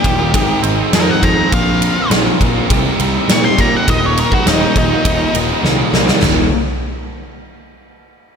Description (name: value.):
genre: quiet-loud alternative rock.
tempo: 102 BPM.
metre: 4/4.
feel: straight.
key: Eb major.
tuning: A4 = 445 Hz.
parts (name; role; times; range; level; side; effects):
octave-fuzz lead guitar; melody; 0.0-5.3 s; Eb4 to Db6; -19 LUFS; left 1 dB; distortion, tape echo.
twangy electric guitar; arpeggios; 0.0-1.5 s; Eb2 to C4; -26 LUFS; right 4 dB; none.
fuzz guitar; riff; 0.0-6.5 s; Eb2 to G4; -20 LUFS; right 10 dB; distortion.
thick fuzz guitar; riff; 0.0-6.5 s; Eb2 to G4; -20 LUFS; left 11 dB; distortion, slapback echo.
fuzz picked electric bass; bass; 0.0-6.5 s; Eb1 to Bb2; -19 LUFS; equal; overdrive.
huge arena drum kit; drums; 0.0-6.4 s; china cymbal, kick drum, ride cymbal, snare drum, toms; -16 LUFS; equal; none.
room: moderate lush hall reverb, RT60 2.6 s.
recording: big arena sound.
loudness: -11 LUFS.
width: side -6 dB against mid.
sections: 0.0-6.2 A section; 6.2-8.4 B section.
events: lead electric guitar solo 0.0-6.2; drum fill 5.6-6.2.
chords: 0.3 Ab; 1.5 Bbsus2; 2.7 Cm; 3.9 Eb; 6.2 Eb5.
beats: 0.33 0.92 | 1.51 2.10 2.69 3.28 | 3.87 4.46 5.05 5.64 | 6.23.